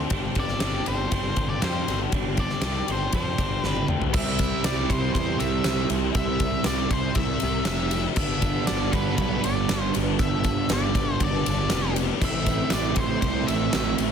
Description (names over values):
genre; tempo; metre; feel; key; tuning
rock, shoegaze and dream pop; 119 BPM; 4/4; straight; C major; A4 = 440 Hz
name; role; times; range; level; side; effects
biting overdriven guitar; riff; 0.0-14.1 s; G2 to E4; -29 LUFS; right 13 dB; reverse reverb
overdriven electric guitar; riff; 0.0-14.1 s; G2 to G4; -30 LUFS; left 12 dB; ensemble chorus
fuzz picked electric bass; bass; 0.0-14.1 s; F1 to F2; -28 LUFS; equal; overdrive
huge arena drum kit; drums; 0.1-14.1 s; crash cymbal, kick drum, ride cymbal, snare drum, toms; -27 LUFS; equal; none
octave-fuzz lead guitar; melody; 0.4-13.9 s; B4 to E5; -31 LUFS; left 1 dB; distortion, analog delay
tambourine; percussion; 4.1-14.1 s; none; -43 LUFS; right 9 dB; none
room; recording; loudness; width
small room ambience; dense, heavily limited modern master; -22 LUFS; side -7 dB against mid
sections
0.0-4.1 A section; 4.1-14.1 B section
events
drum fill 3.6-4.1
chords
0.0 Gsus4; 4.1 C; 8.2 G; 12.2 Am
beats
| 0.12 0.62 1.12 1.63 | 2.13 2.64 3.14 3.64 | 4.15 4.65 5.15 5.66 | 6.16 6.66 7.17 7.67 | 8.18 8.68 9.18 9.69 | 10.19 10.70 11.20 11.71 | 12.21 12.72 13.22 13.73